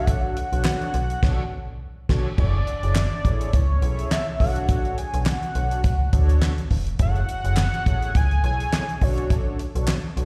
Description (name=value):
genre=early-eighties boogie funk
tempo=104 BPM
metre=4/4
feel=swing 56% on 16ths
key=F# minor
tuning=A4 = 440 Hz
part: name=fat analog lead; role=melody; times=0.0-9.6 s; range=C#5 to G#5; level=-32 LUFS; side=equal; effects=chorus, slapback echo, tape echo
part: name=mellow synth brass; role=accompaniment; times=0.0-10.2 s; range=D4 to C#5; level=-35 LUFS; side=equal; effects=chorus, slapback echo
part: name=metallic FM bass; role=bass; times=0.0-10.2 s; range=E1 to D2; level=-25 LUFS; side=equal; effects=none
part: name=damped 70s drum kit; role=drums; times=0.1-10.2 s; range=crash cymbal, handclaps, hi-hat, kick drum, snare drum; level=-25 LUFS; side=equal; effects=none
part: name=group handclap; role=percussion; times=0.6-10.0 s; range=none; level=-37 LUFS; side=equal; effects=slapback echo
room=little or no reverb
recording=live gig heard through the venue's PA, recital hall reverb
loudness=-23 LUFS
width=mono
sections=0.0-2.4 A section; 2.4-10.2 B section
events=band accent 1.2-2.4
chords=0.0 Bm9; 2.4 F#m9; 4.4 Bm9; 7.0 F#m9; 9.0 Bm9